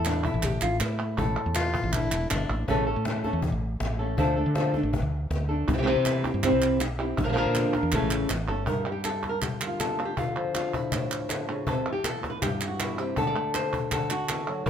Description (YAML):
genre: flamenco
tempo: 160 BPM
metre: 4/4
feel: straight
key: unclear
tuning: A4 = 440 Hz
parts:
  - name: flamenco guitar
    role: melody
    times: 0.0-14.7 s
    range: G2 to D5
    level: -27 LUFS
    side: equal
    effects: none
  - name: woody fretless electric bass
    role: bass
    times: 0.0-8.7, 14.7 s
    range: E1 to D3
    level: -28 LUFS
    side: right 1 dB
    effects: none
  - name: cajon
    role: percussion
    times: 0.1-14.7 s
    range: none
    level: -33 LUFS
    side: left 3 dB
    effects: none
  - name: palmas hand claps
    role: percussion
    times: 0.1-2.7, 5.7-14.7 s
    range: none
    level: -34 LUFS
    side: right 4 dB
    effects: none
  - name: breathy soprano saxophone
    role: second line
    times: 1.6-2.6 s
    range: D4 to F4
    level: -30 LUFS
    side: left 3 dB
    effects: none
room: light reverb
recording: close, detailed microphones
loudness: -24 LUFS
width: side -8 dB against mid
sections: 0.0-2.7 A section; 2.7-8.7 B section; 8.7-14.7 C section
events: none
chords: 0.0 A5; 1.2 Asus4; 2.7 A; 4.2 Dm; 5.7 C; 7.2 Bb; 7.9 A; 8.7 Gm7; 10.2 Dm; 11.7 C; 13.2 D7